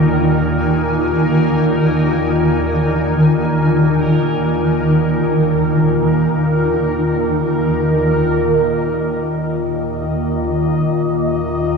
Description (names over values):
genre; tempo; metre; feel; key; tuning
dark ambient drone; free time; none; none; unclear; A4 = 440 Hz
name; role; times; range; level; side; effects
granular cloud pad; sustained chords; 0.0-11.8 s; Eb3 to Bb5; -18 LUFS; equal; built-in reverb
organ-like drone; drone; 0.0-11.8 s; Eb2 to Bb2; -17 LUFS; left 1 dB; ensemble chorus, built-in reverb
bubbling stepped-filter texture; texture; 0.0-11.8 s; Bb4 to Eb5; -22 LUFS; right 5 dB; chorus, built-in reverb
room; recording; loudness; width
wet huge ambient reverb, RT60 7.7 s; worn, warbling old tape, cassette tape, warbly pitch drift; -14 LUFS; side -5 dB against mid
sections
0.0-8.3 A section; 8.3-11.8 B section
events
fade-in on ambient pad 8.3-11.8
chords
0.0 Eb5